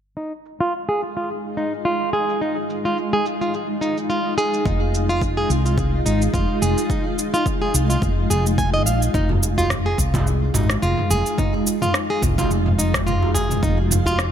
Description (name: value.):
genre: organic downtempo.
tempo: 107 BPM.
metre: 4/4.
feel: swing 56% on 16ths.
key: F minor.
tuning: A4 = 440 Hz.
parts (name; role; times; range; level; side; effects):
granular cloud pad; sustained chords; 0.9-14.3 s; Ab3 to F4; -25 LUFS; equal; built-in reverb, sidechain pumping.
flamenco guitar; arpeggios; 0.2-14.2 s; Eb4 to Ab5; -23 LUFS; right 1 dB; low-pass filter, digital delay.
organic electronic drum kit; drums; 0.2-14.3 s; rim click, shaker, toms; -24 LUFS; right 1 dB; overdrive, low-pass filter on perc, low-pass filter on toms, low-pass filter on snare, low-pass filter on room.
woody fretless electric bass; bass; 4.7-14.3 s; F1 to C2; -21 LUFS; equal; none.
electronic kick drum; drums; 4.7-13.8 s; none; -25 LUFS; equal; overdrive.
djembe; percussion; 9.3-14.2 s; none; -31 LUFS; right 2 dB; none.
room: light reverb, digital ambience.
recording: none.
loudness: -18 LUFS.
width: side -9 dB against mid.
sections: 0.2-9.1 A section; 9.1-14.3 B section.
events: filter sweep on drum 0.2-9.1; filter sweep on nylon-string guitar 0.2-9.1.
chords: 0.2 Fm7.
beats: | 0.17 0.73 1.29 1.85 | 2.41 2.97 3.54 4.10 | 4.66 5.22 5.78 6.34 | 6.90 7.46 8.02 8.58 | 9.14 9.70 10.26 10.82 | 11.38 11.95 12.51 13.07 | 13.63 14.19.